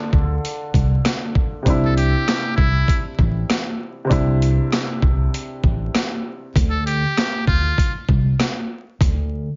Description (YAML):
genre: hip hop, boom-bap hip-hop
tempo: 98 BPM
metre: 4/4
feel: swing 55% on 16ths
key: unclear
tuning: A4 = 441 Hz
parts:
  - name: warm baby grand piano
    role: accompaniment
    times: 0.0-6.6 s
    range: C3 to A4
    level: -28 LUFS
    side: equal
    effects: cassette tape, high-pass filter, low-pass filter, plate reverb
  - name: upright bass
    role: bass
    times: 0.1-9.5 s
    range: A1 to D2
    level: -22 LUFS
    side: equal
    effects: none
  - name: boom bap sampler-style drum kit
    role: drums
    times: 0.1-9.2 s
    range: hi-hat, kick drum, rim click, snare drum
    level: -22 LUFS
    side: equal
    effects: none
  - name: trumpet with metal mute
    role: melody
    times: 1.9-3.0, 6.7-7.9 s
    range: E4 to A4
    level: -26 LUFS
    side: equal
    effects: high-pass filter, low-pass filter, plate reverb, delay
room: little or no reverb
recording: vinyl crackle, nothing above 7.5 kHz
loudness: -20 LUFS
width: mono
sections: 0.0-9.6 A section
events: none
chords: 0.0 Dm; 1.7 Cadd9; 6.6 N.C.